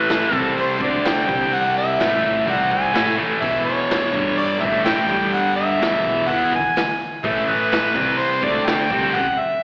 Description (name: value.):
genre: garage rock duo or trio.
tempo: 126 BPM.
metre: 4/4.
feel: straight.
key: unclear.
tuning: A4 = 441 Hz.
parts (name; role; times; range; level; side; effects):
mellow harmonica; melody; 0.0-9.6 s; B4 to G#5; -20 LUFS; equal; overdrive, slapback echo.
thick fuzz guitar; riff; 0.0-9.1 s; E2 to A4; -21 LUFS; equal; distortion, slapback echo.
overdriven picked electric bass; bass; 0.0-9.1 s; E1 to A2; -31 LUFS; equal; none.
raw garage drum kit; drums; 0.1-9.3 s; crash cymbal, hi-hat, kick drum, snare drum; -26 LUFS; equal; none.
group handclap; percussion; 0.1-8.8 s; none; -32 LUFS; equal; none.
room: moderate plate reverb, RT60 2.4 s.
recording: live gig heard through the venue's PA, recital hall reverb, AM radio sound.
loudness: -16 LUFS.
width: side -34 dB against mid.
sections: 0.0-9.6 A section.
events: none.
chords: 0.3 C5; 0.8 D5; 1.3 C5; 2.0 A5; 2.5 C5; 3.0 A5; 3.4 E5; 4.1 G5; 4.6 A5; 5.1 G5; 5.8 E; 7.2 A5; 8.0 C5; 8.4 D5; 8.9 C5.